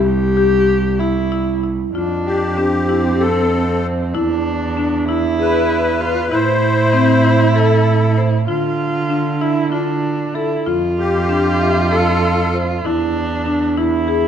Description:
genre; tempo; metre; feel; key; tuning
contemporary instrumental, chamber music in an uneven meter; 192 BPM (eighths); 7/8; straight; unclear; A4 = 440 Hz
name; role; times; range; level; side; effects
warm viola; second line; 0.0-14.3 s; C4 to G4; -20 LUFS; right 2 dB; none
marimba with medium hard mallets; arpeggios; 0.0-14.3 s; C4 to E5; -19 LUFS; left 3 dB; none
warm cello; bass; 0.0-14.3 s; C2 to D3; -19 LUFS; right 4 dB; none
musette accordion; melody; 2.3-12.6 s; G4 to C5; -19 LUFS; left 3 dB; none
room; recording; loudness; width
wet recital hall reverb, RT60 1.3 s; dark, warm production; -14 LUFS; side -8 dB against mid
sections
0.0-1.9 A section; 1.9-14.3 B section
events
none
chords
0.0 C; 1.9 F; 4.1 E7; 6.3 Am; 8.5 Dm; 10.7 F; 12.9 E7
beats
0.06 0.37 0.68 1.00 1.32 1.63 | 1.95 2.26 2.58 2.89 3.20 3.52 3.83 | 4.14 4.45 4.77 5.08 5.39 5.70 6.01 | 6.32 6.62 6.93 7.24 7.55 7.86 8.17 | 8.48 8.79 9.10 9.41 9.72 10.04 10.35 | 10.67 10.98 11.29 11.61 11.92 12.23 12.54 | 12.85 13.16 13.47 13.77 14.08

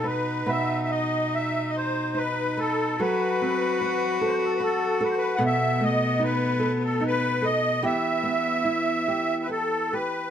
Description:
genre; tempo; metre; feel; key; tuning
celtic folk, Celtic slow air; 74 BPM; 3/4; uneven beats, rubato; unclear; A4 = 440 Hz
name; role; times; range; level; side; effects
musette accordion; melody; 0.0-10.3 s; A4 to F#5; -26 LUFS; equal; none
rich cello; second line; 0.0-9.9 s; B3 to F#4; -29 LUFS; left 2 dB; none
nylon-string guitar; accompaniment; 0.0-10.3 s; B2 to B4; -28 LUFS; right 2 dB; none
room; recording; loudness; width
moderate studio reverb, RT60 0.8 s; band playing live in one room; -22 LUFS; side -9 dB against mid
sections
0.0-10.3 A section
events
none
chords
0.0 B; 3.0 F#dim; 5.4 B7; 7.8 Em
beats
| 0.49 1.34 2.18 | 3.00 3.82 4.61 | 5.40 6.21 7.02 | 7.83 8.64 9.50

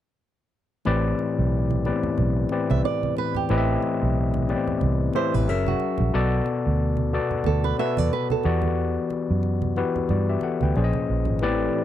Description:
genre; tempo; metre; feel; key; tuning
R&B, neo-soul; 91 BPM; 4/4; swing 57% on 16ths; A dorian; A4 = 440 Hz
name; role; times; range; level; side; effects
overdriven tine electric piano; accompaniment; 0.9-11.8 s; A2 to G5; -24 LUFS; left 4 dB; none
vintage muted fingered electric bass; bass; 0.9-11.7 s; F#1 to G2; -23 LUFS; right 1 dB; none
congas; percussion; 0.9-11.6 s; none; -32 LUFS; right 7 dB; none
flamenco guitar; second line; 2.7-8.6 s; F#4 to E5; -28 LUFS; right 14 dB; none
glass harmonica; sustained chords; 11.4-11.8 s; C4 to D5; -30 LUFS; right 7 dB; none
room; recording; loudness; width
little or no reverb; dry, close 1970s-style studio recording; -21 LUFS; side -12 dB against mid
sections
0.9-11.8 A section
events
none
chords
0.9 Am11; 5.5 F#7; 6.1 Bm7; 8.4 Em9; 10.7 Bbm11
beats
| 0.86 1.51 2.17 2.83 | 3.49 4.15 4.81 5.47 | 6.13 6.79 7.45 8.11 | 8.77 9.43 10.09 10.75 | 11.41

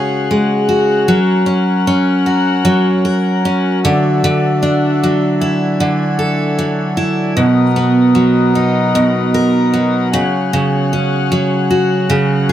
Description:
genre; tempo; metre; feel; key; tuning
acoustic pop; 76 BPM; 4/4; swing 55% on 16ths; F# major; A4 = 441 Hz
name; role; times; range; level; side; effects
picked steel-string acoustic guitar; accompaniment; 0.0-12.5 s; B2 to A#4; -12 LUFS; right 1 dB; none
hand-pumped harmonium; sustained chords; 0.0-12.5 s; B3 to G#5; -20 LUFS; left 5 dB; none
room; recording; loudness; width
light reverb; none; -12 LUFS; side -11 dB against mid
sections
0.0-12.5 A section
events
none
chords
0.0 C#sus4; 1.1 F#; 3.8 Dadd9; 7.4 Bmaj7; 10.1 C#sus4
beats
0.28 | 1.07 1.86 2.65 3.43 | 4.22 5.00 5.79 6.58 | 7.37 8.15 8.94 9.73 | 10.51 11.30 12.09

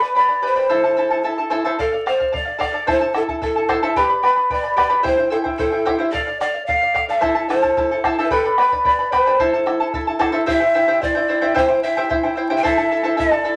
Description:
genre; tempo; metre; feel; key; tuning
andean folk, Andean ensemble; 110 BPM; 2/4; straight; A minor; A4 = 442 Hz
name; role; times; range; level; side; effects
breathy large pan pipes; melody; 0.0-13.6 s; G4 to G5; -22 LUFS; equal; none
charango; accompaniment; 0.0-13.6 s; E4 to B5; -21 LUFS; equal; none
bombo; percussion; 1.8-13.3 s; none; -30 LUFS; equal; none
room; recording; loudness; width
moderate studio ambience, RT60 0.5 s; vinyl crackle; -18 LUFS; mono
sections
0.0-1.8 A section; 1.8-10.5 A section; 10.5-13.6 B section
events
none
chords
0.0 G; 0.7 Am; 1.8 Dm; 2.9 Am; 4.0 G; 5.1 C; 6.1 Dm; 7.2 Am; 8.3 G; 9.4 Am; 10.5 C; 12.6 Am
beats
0.15 | 0.70 1.25 | 1.79 2.33 | 2.88 3.42 | 3.97 4.51 | 5.05 5.60 | 6.14 6.68 | 7.23 7.77 | 8.31 8.86 | 9.40 9.94 | 10.48 11.02 | 11.56 12.11 | 12.65 13.19

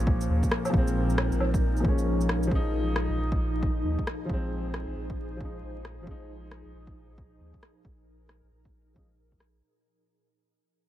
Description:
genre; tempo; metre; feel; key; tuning
future garage; 135 BPM; 4/4; swing 62% on 16ths; unclear; A4 = 440 Hz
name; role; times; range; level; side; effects
dark upright piano; accompaniment; 0.0-9.1 s; Bb2 to Eb4; -32 LUFS; equal; sidechain pumping, low-pass filter, tape echo
ethereal airy pad; sustained chords; 0.0-9.6 s; Bb2 to C5; -35 LUFS; left 1 dB; ensemble chorus, built-in reverb, sidechain pumping
warm sub bass; bass; 0.0-9.6 s; F1 to Eb2; -30 LUFS; equal; sidechain pumping
electronic kick drum; drums; 0.1-9.4 s; none; -28 LUFS; equal; none
electronic shaker, rim click and woodblock; drums; 0.2-9.5 s; none; -32 LUFS; equal; none
room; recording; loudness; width
digital ambience; vinyl crackle; -25 LUFS; side -13 dB against mid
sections
0.0-9.6 A section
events
fade-out 0.0-9.6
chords
0.0 Bbm7; 2.5 Fm7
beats
0.29 | 0.73 1.18 1.62 2.07 | 2.51 2.96 3.40 3.84 | 4.29 4.73 5.18 5.62 | 6.07 6.51 6.96 7.40 | 7.84 8.29 8.73 9.18

